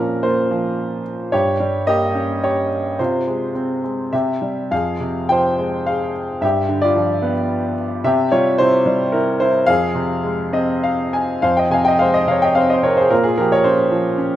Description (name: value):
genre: classical, lyrical solo piano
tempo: 99-114 BPM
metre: 3/4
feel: rubato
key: F minor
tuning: A4 = 439 Hz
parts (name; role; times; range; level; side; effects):
- warm grand piano; solo; 0.0-14.4 s; F2 to Ab5; -16 LUFS; equal; none
room: moderate recital hall reverb, RT60 1.5 s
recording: none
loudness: -16 LUFS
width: side -12 dB against mid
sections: 0.0-11.4 A section; 11.4-14.4 B section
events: grand piano fill 10.2-11.4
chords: 0.0 Bbmadd9; 1.3 Gdim; 3.0 Fm/C; 4.1 C; 4.7 Fmadd9; 6.4 G7; 8.0 C; 9.7 Fm; 13.1 Bbmadd9